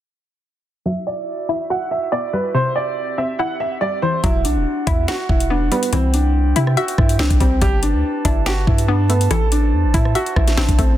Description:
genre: hip hop, drill.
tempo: 142 BPM.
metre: 4/4.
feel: half-time.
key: E minor.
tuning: A4 = 440 Hz.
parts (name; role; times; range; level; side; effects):
dark baby grand piano; melody; 0.9-10.9 s; B3 to F#5; -21 LUFS; right 2 dB; low-pass filter, tape echo.
hollow square pluck; accompaniment; 0.9-11.0 s; C3 to E5; -25 LUFS; left 4 dB; chorus, low-pass filter.
glass harmonica; sustained chords; 1.0-11.0 s; C4 to A5; -30 LUFS; right 3 dB; stereo widening, low-pass filter.
long sustained 808-style bass; bass; 4.2-11.0 s; E1 to C3; -18 LUFS; equal; none.
drill drum kit; drums; 4.2-10.9 s; finger snaps, hi-hat, kick drum, rim click, snare drum; -18 LUFS; equal; soft clipping on snare.
room: digital ambience.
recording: dense, heavily limited modern master.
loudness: -16 LUFS.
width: side -12 dB against mid.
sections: 0.9-4.2 A section; 4.2-11.0 B section.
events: filter sweep 0.9-4.2.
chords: 0.9 Emadd9; 2.5 C; 4.2 Emadd9; 5.9 C; 7.6 Gadd9; 9.3 Am.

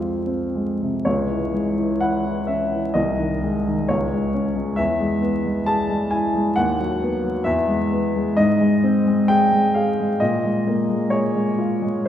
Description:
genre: classical, romantic character piece for solo piano.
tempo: 66 BPM.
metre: 2/4.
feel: uneven beats, rubato.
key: C# minor.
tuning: A4 = 440 Hz.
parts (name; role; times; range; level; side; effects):
warm upright piano; solo; 0.0-12.1 s; B#1 to A5; -18 LUFS; left 1 dB; none.
room: wet concert hall reverb, RT60 2.4 s.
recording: recorded in a church or concert hall, vinyl crackle.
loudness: -18 LUFS.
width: side -10 dB against mid.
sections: 0.0-1.1 A section; 1.1-12.1 B section.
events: none.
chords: 0.0 Fm; 1.1 C#m; 3.0 G#/B#; 3.9 C#5; 4.8 E; 6.6 B/D#; 7.5 E; 8.4 Ab; 10.2 Bbm7.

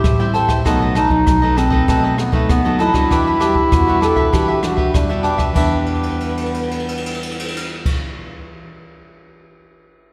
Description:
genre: samba and choro.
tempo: 98 BPM.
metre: 4/4.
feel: straight.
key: E minor.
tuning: A4 = 439 Hz.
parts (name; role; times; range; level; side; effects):
mellow clarinet; melody; 0.0-4.9 s; A3 to G4; -21 LUFS; equal; none.
cavaquinho; accompaniment; 0.0-8.5 s; D4 to G5; -24 LUFS; equal; none.
nylon-string guitar; accompaniment; 0.0-8.5 s; F#2 to F#4; -26 LUFS; equal; none.
upright bass; bass; 0.0-7.9 s; A1 to E3; -25 LUFS; equal; none.
jazz brush drum kit; drums; 0.0-9.5 s; crash cymbal, hi-hat, kick drum, ride cymbal, rim click; -23 LUFS; equal; none.
warm trombone; second line; 3.4-7.9 s; B3 to A4; -25 LUFS; equal; none.
room: wet concert hall reverb, RT60 2.2 s.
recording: recorded in a church or concert hall.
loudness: -17 LUFS.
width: mono.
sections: 0.0-5.6 A section; 5.6-8.0 B section.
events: drum fill 5.9-7.9.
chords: 0.0 Am7; 0.7 B7; 3.1 Em9; 5.6 Em7.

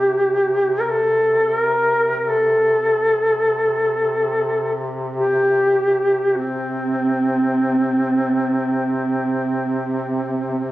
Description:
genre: caucasian folk, Caucasian lament.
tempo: free time.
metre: none.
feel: none.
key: unclear.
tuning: A4 = 440 Hz.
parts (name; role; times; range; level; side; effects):
mellow duduk; melody; 0.0-10.7 s; C4 to Bb4; -17 LUFS; equal; none.
mellow duduk; drone; 0.0-10.7 s; C3; -27 LUFS; left 1 dB; none.
room: light reverb.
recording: recorded on a phone in the room, studio reverb.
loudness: -17 LUFS.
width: side -16 dB against mid.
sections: 0.0-10.7 A section.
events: slowing down 5.9-10.7.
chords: none.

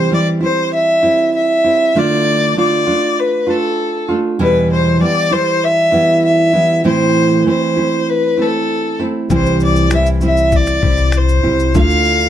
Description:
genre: acoustic pop.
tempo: 98 BPM.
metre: 4/4.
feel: straight.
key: C major.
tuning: A4 = 442 Hz.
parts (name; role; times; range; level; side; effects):
warm violin; melody; 0.0-12.3 s; A4 to F5; -15 LUFS; left 1 dB; none.
nylon-string guitar; accompaniment; 0.0-12.3 s; E2 to F4; -15 LUFS; right 2 dB; none.
upright bass; bass; 9.3-12.3 s; C2 to D2; -16 LUFS; left 2 dB; none.
dusty soul sampler-style drum kit; drums; 9.3-12.3 s; finger snaps, kick drum, shaker; -19 LUFS; left 4 dB; none.
room: light reverb.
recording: close, detailed microphones.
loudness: -12 LUFS.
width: side -10 dB against mid.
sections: 0.0-12.3 A section.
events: none.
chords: 0.0 C; 2.0 Dm; 4.4 Em; 6.9 Am; 9.3 C; 11.8 Dm.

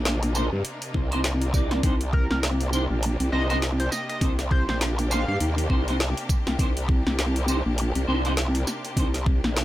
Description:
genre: glitch hop.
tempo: 101 BPM.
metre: 4/4.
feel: swing 58% on 16ths.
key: C minor.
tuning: A4 = 440 Hz.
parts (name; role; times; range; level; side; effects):
bright studio string section; sustained chords; 0.0-9.6 s; C3 to G4; -34 LUFS; left 1 dB; sidechain pumping.
growl bass; bass; 0.0-9.6 s; Bb1 to G2; -24 LUFS; equal; chorus, tube saturation.
drum and bass drum kit; drums; 0.1-9.6 s; hi-hat, snare drum, tambourine; -28 LUFS; equal; overdrive, small room ambience.
clean electric guitar; stabs; 0.3-9.1 s; D4 to D5; -31 LUFS; right 1 dB; ensemble chorus, sidechain pumping, digital delay.
electronic kick drum; drums; 0.9-9.4 s; none; -23 LUFS; equal; overdrive, small room ambience.
sync lead; melody; 2.1-5.4 s; Bb4 to F5; -32 LUFS; equal; chorus, digital delay.
room: little or no reverb.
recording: none.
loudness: -22 LUFS.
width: side -15 dB against mid.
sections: 0.0-9.6 A section.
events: none.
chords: 0.0 Cm9.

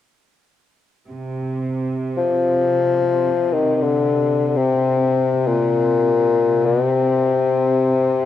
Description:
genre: caucasian folk, Caucasian lament.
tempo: free time.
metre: none.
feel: none.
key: C minor.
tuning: A4 = 440 Hz.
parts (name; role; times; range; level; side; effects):
clear chamber cello section; drone; 1.1-8.3 s; C3; -24 LUFS; right 3 dB; cassette tape.
mellow bassoon; melody; 2.2-8.3 s; Bb2 to F3; -16 LUFS; left 4 dB; cassette tape.
room: light reverb, small room ambience.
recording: home recording on cassette.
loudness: -16 LUFS.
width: side -11 dB against mid.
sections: 1.1-8.3 A section.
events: none.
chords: none.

